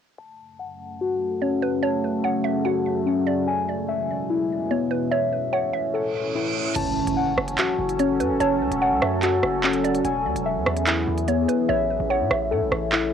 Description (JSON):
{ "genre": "hip hop, drill", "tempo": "146 BPM", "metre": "4/4", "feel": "half-time", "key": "F# minor", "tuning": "A4 = 441 Hz", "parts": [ { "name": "deep dark ambient pad", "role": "sustained chords", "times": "0.8-13.1 s", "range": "E2 to A4", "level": "-28 LUFS", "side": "right 3 dB", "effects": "chorus, built-in reverb, low-pass filter" }, { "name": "muted felt-like synth keys", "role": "arpeggios", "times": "0.2-13.1 s", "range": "B3 to A5", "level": "-24 LUFS", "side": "left 6 dB", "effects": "chorus, low-pass filter, tape echo" }, { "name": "mallet-like synth pluck", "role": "second line", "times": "1.4-13.1 s", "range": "B4 to F#5", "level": "-28 LUFS", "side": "right 10 dB", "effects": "chorus, tape echo" }, { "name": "reverse cymbal and impact", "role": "sound effects", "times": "6.1-8.4 s", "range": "none", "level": "-32 LUFS", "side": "right 4 dB", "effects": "none" }, { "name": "hard-hitting 808-style bass", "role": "bass", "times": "6.8-13.1 s", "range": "E1 to A2", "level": "-29 LUFS", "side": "right 2 dB", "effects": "none" }, { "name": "drill drum kit", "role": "drums", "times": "6.8-13.0 s", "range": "crash cymbal, handclaps, hi-hat, rim click", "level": "-24 LUFS", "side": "right 2 dB", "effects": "cassette tape" } ], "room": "light reverb", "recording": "home recording on cassette", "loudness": "-20 LUFS", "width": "side -8 dB against mid", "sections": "0.2-6.8 A section; 6.8-13.1 B section", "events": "filter sweep 0.2-6.8; reverse cymbal 6.1-6.8; impact 6.8-8.4; hi-hats muted 11.7-13.1", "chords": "0.2 F#m; 3.5 E; 5.1 A; 6.8 F#m; 10.0 E; 11.7 A" }